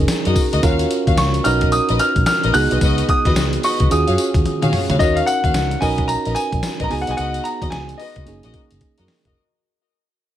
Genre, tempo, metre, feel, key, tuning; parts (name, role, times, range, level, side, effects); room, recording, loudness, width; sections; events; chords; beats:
R&B, new jack swing; 110 BPM; 4/4; swing 61% on 16ths; Eb minor; A4 = 438 Hz
warm concert grand piano; melody; 0.0-9.0 s; Eb5 to Gb6; -21 LUFS; left 1 dB
tine electric piano; accompaniment; 0.0-9.4 s; Bb3 to Bb4; -23 LUFS; right 5 dB
vintage muted fingered electric bass; bass; 0.0-9.3 s; F1 to Eb3; -21 LUFS; equal
boom bap sampler-style drum kit; drums; 0.1-9.4 s; hi-hat, kick drum, snare drum, tambourine, toms; -21 LUFS; left 1 dB; gated reverb
dark studio string section; stabs; 0.2-9.4 s; Gb4 to F5; -25 LUFS; left 4 dB
light reverb, digital ambience; -15 LUFS; side -11 dB against mid
0.0-5.0 A section; 5.0-9.4 B section
drum fill 4.4-5.0, 8.8-9.4; fade-out 5.0-9.4
0.0 Gb6; 0.6 Ebm9; 1.4 Bmaj7; 2.5 Db9sus4; 3.9 Ebm11; 5.0 Ebm9; 5.8 Bmaj7; 6.9 Db9sus4; 8.3 Gb6
0.09 | 0.63 1.18 1.72 2.27 | 2.81 3.36 3.90 4.45 | 5.00 5.54 6.09 6.63 | 7.18 7.72 8.27 8.81